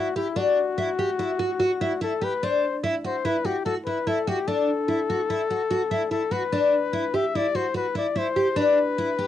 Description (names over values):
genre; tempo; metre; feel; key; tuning
progressive instrumental, progressive; 146 BPM; 5/4; straight; unclear; A4 = 440 Hz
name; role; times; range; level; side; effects
mellow trumpet; melody; 0.0-9.3 s; E4 to E5; -26 LUFS; left 6 dB; none
picked twelve-string acoustic guitar; arpeggios; 0.0-9.3 s; D4 to G4; -24 LUFS; equal; cassette tape
room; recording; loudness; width
moderate studio reverb, RT60 0.5 s; home recording on cassette; -22 LUFS; side -11 dB against mid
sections
0.0-9.3 A section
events
none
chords
0.0 Em9; 2.4 Dadd9; 6.5 Em9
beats
| 0.38 0.79 1.20 1.60 2.02 | 2.43 2.83 3.25 3.65 4.07 | 4.47 4.88 5.29 5.70 6.11 | 6.52 6.93 7.34 7.75 8.16 | 8.57 8.98